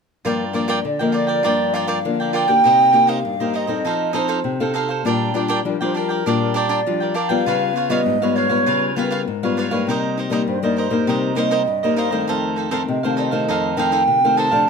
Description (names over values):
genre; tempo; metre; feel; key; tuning
samba; 100 BPM; 4/4; straight; unclear; A4 = 440 Hz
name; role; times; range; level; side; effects
cavaquinho; accompaniment; 0.2-14.7 s; D4 to G5; -24 LUFS; right 5 dB; none
nylon-string guitar; accompaniment; 0.2-14.7 s; F2 to A4; -21 LUFS; left 4 dB; none
baroque flute; melody; 0.8-14.7 s; Bb4 to A5; -19 LUFS; right 2 dB; none
room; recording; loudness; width
moderate studio reverb, RT60 1.0 s; close, detailed microphones; -17 LUFS; side -5 dB against mid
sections
0.2-14.7 A section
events
none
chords
0.2 Gm7; 2.7 Cm7; 3.9 F7; 5.1 Bb6; 7.5 C#7#11; 9.9 Cm7; 12.3 F7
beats
| 0.25 0.85 1.45 2.05 | 2.65 3.25 3.85 4.46 | 5.06 5.66 6.26 6.86 | 7.46 8.07 8.67 9.27 | 9.87 10.47 11.08 11.68 | 12.28 12.88 13.48 14.09 | 14.69